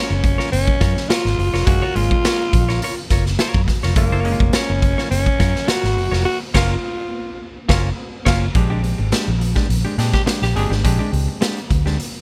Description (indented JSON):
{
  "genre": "funk",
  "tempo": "105 BPM",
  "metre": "4/4",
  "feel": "straight",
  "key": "unclear",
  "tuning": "A4 = 440 Hz",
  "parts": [
    { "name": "growling tenor saxophone", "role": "melody", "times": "0.0-7.6 s", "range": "Bb3 to Gb4", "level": "-25 LUFS", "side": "equal", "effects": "none" },
    { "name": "semi-hollow electric guitar", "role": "accompaniment", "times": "0.0-12.0 s", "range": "Ab3 to Db5", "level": "-27 LUFS", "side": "equal", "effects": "none" },
    { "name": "mellow clav", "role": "stabs", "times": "0.0-11.5 s", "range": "Ab3 to G4", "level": "-30 LUFS", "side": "equal", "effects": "none" },
    { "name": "vintage muted fingered electric bass", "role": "bass", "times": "0.1-12.0 s", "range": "F1 to Bb2", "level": "-22 LUFS", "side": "equal", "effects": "none" },
    { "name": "raw garage drum kit", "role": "drums", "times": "0.2-12.1 s", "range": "crash cymbal, hi-hat, kick drum, snare drum", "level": "-22 LUFS", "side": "equal", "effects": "none" },
    { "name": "growling tenor saxophone", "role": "second line", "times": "6.6-10.7 s", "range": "F4 to Ab4", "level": "-27 LUFS", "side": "equal", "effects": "none" }
  ],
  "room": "little or no reverb",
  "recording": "none",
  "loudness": "-18 LUFS",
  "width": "mono",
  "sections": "0.0-8.6 A section; 8.6-12.2 B section",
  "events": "band accent 6.3-8.6",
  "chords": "0.0 Gbmaj7; 8.6 Bb13"
}